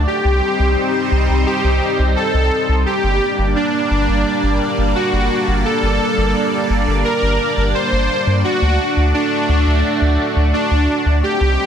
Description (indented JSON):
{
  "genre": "synthwave",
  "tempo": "86 BPM",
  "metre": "4/4",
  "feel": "straight",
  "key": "G harmonic minor",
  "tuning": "A4 = 440 Hz",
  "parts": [
    { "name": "lush unison pad", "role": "sustained chords", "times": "0.0-11.7 s", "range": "G3 to D5", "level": "-19 LUFS", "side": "equal", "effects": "chorus, phaser" },
    { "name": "round analog bass", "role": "bass", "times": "0.0-11.6 s", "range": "G1 to G2", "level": "-17 LUFS", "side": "equal", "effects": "none" },
    { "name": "soft supersaw", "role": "melody", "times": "0.1-11.7 s", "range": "D4 to C5", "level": "-18 LUFS", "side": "equal", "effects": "digital delay" }
  ],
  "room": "light reverb",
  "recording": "dense, heavily limited modern master",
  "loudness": "-14 LUFS",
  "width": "side -8 dB against mid",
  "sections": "0.0-11.7 A section",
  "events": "none",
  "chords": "0.1 Cm; 2.9 Gm; 8.4 D"
}